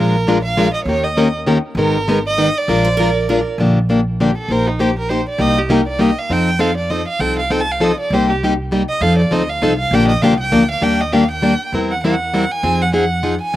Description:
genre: acoustic string swing (jazz manouche)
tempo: 199 BPM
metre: 3/4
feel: swing 58% on 8ths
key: Bb major from 3.6 s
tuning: A4 = 435 Hz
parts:
  - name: warm violin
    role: melody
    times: 0.0-13.6 s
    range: Eb4 to A5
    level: -20 LUFS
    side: right 2 dB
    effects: slapback echo
  - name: picked plugged-in steel-string acoustic guitar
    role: accompaniment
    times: 0.0-13.6 s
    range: C3 to C5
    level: -16 LUFS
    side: left 1 dB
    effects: none
  - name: upright bass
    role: bass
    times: 0.0-13.6 s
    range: Ab1 to F2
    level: -21 LUFS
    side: right 1 dB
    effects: none
  - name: picked steel-string acoustic guitar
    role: second line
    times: 2.8-3.6 s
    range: Bb4 to C5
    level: -21 LUFS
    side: right 6 dB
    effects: slapback echo
room: little or no reverb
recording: recorded outdoors, with no room sound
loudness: -14 LUFS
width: side -14 dB against mid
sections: 0.0-3.6 A section; 3.6-10.8 B section; 10.8-13.6 B section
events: violin solo 3.6-13.6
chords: 0.0 Bb7; 0.9 Eb7; 1.8 Abmadd9; 2.7 Bb7; 3.6 Bb6; 4.5 Eb6/Bb; 5.4 Cm7; 6.3 F7; 8.1 Cm7; 9.0 F7; 9.9 Bb6; 10.8 Ebmaj7; 11.7 C7/E; 12.6 Fm7

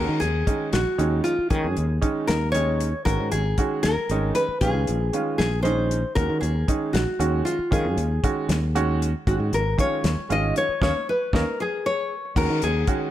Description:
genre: electric jazz fusion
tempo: 77 BPM (dotted quarters)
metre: 6/8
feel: straight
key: Eb minor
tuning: A4 = 440 Hz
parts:
  - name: nylon-string guitar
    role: melody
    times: 0.0-13.1 s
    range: F4 to Eb5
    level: -25 LUFS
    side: left 2 dB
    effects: none
  - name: bright baby grand piano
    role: accompaniment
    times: 0.0-13.1 s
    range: Eb3 to Ab4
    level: -27 LUFS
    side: right 4 dB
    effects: none
  - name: fretless electric bass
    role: bass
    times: 0.0-12.8 s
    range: Ab1 to Eb3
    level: -24 LUFS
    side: equal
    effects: none
  - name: damped 70s drum kit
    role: drums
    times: 0.2-13.0 s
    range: crash cymbal, hi-hat, kick drum, snare drum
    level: -26 LUFS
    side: left 1 dB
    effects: none
room: light reverb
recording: none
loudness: -21 LUFS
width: side -12 dB against mid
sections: 0.0-12.4 A section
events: band accent 10.8-12.4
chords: 0.0 Ebm7; 3.1 Ab9sus4; 4.6 Bbm11; 6.2 Ebm11; 9.3 Ab7sus4; 10.8 Eb7sus4; 12.4 Ebm7

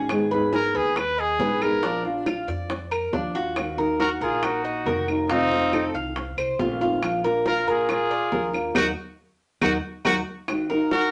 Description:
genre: latin, Cuban son and guajira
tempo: 139 BPM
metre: 4/4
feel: straight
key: Eb minor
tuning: A4 = 440 Hz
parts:
  - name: nylon-string guitar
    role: accompaniment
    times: 0.0-11.1 s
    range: C3 to Ab4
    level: -29 LUFS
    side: equal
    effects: none
  - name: Cuban tres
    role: arpeggios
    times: 0.0-11.1 s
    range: D4 to F5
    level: -29 LUFS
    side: equal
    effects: none
  - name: upright bass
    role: bass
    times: 0.0-10.2 s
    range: F1 to Bb2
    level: -39 LUFS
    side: equal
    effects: none
  - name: bongos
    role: percussion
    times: 0.1-11.1 s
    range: none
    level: -32 LUFS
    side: equal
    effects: none
  - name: claves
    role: percussion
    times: 0.1-10.7 s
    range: none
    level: -34 LUFS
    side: equal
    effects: none
  - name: bright trumpet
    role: melody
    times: 0.5-11.1 s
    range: Eb4 to Cb5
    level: -27 LUFS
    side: equal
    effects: none
  - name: clear trumpet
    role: second line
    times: 4.0-11.1 s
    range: C4 to Gb4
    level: -32 LUFS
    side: equal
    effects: none
room: moderate studio reverb, RT60 0.6 s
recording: nothing above 10.9 kHz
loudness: -24 LUFS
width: mono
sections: 0.0-10.5 A section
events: band accent 8.8-10.5; drum fill 10.1-10.5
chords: 0.1 Abm; 1.8 Bb; 3.6 Ebm; 5.3 F7; 7.0 Bb; 8.8 Ebm

